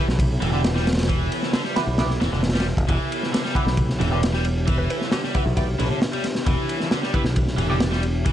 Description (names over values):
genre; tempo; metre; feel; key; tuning
breakbeat, breaks; 134 BPM; 4/4; straight; E minor; A4 = 439 Hz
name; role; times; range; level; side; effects
deep dark ambient pad; sustained chords; 0.0-8.3 s; B3 to A4; -32 LUFS; equal; chorus, built-in reverb, sidechain pumping
cranked stack guitar; riff; 0.0-8.3 s; D3 to G3; -28 LUFS; equal; overdrive, tube saturation, ping-pong delay
band-passed chord stab; stabs; 0.0-7.9 s; B3 to D5; -30 LUFS; right 2 dB; phaser, lush chorus, ping-pong delay
fingered electric bass; bass; 0.1-8.3 s; E1 to B1; -23 LUFS; equal; none
crunchy breakbeat drum kit; drums; 0.1-8.3 s; kick drum, ride cymbal, snare drum; -23 LUFS; equal; none
congas; percussion; 0.2-7.8 s; none; -31 LUFS; right 1 dB; none
mallet-like synth pluck; melody; 4.8-5.5 s; G4 to B4; -32 LUFS; right 1 dB; chorus, phaser, telephone sound, ping-pong delay
room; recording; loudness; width
small room ambience; vinyl crackle, nothing above 10.9 kHz; -20 LUFS; side -11 dB against mid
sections
0.0-8.3 A section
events
none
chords
0.0 Em